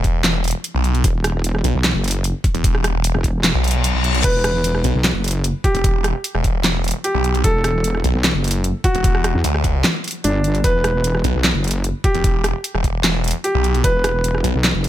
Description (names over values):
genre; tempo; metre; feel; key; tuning
heavy wobble dubstep; 150 BPM; 4/4; half-time; E minor; A4 = 440 Hz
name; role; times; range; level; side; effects
snarling distorted saw bass; bass; 0.0-14.5 s; E1 to D2; -18 LUFS; equal; overdrive
dubstep drum kit; drums; 0.0-14.9 s; crash cymbal, handclaps, hi-hat, rim click, snare drum; -21 LUFS; equal; small room ambience
electronic kick drum; drums; 0.0-13.9 s; none; -18 LUFS; equal; small room ambience
wobble bass; bass; 1.0-14.9 s; E1 to E2; -20 LUFS; equal; chorus, overdrive
reverse cymbal; sound effects; 3.6-4.2 s; none; -24 LUFS; left 6 dB; none
warm grand piano; melody; 4.2-14.4 s; D4 to B4; -22 LUFS; equal; ping-pong delay
room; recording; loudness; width
digital ambience; none; -16 LUFS; side -13 dB against mid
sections
0.0-14.9 A section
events
kick drops out 3.4-4.2; reverse cymbal 3.6-4.2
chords
0.0 E5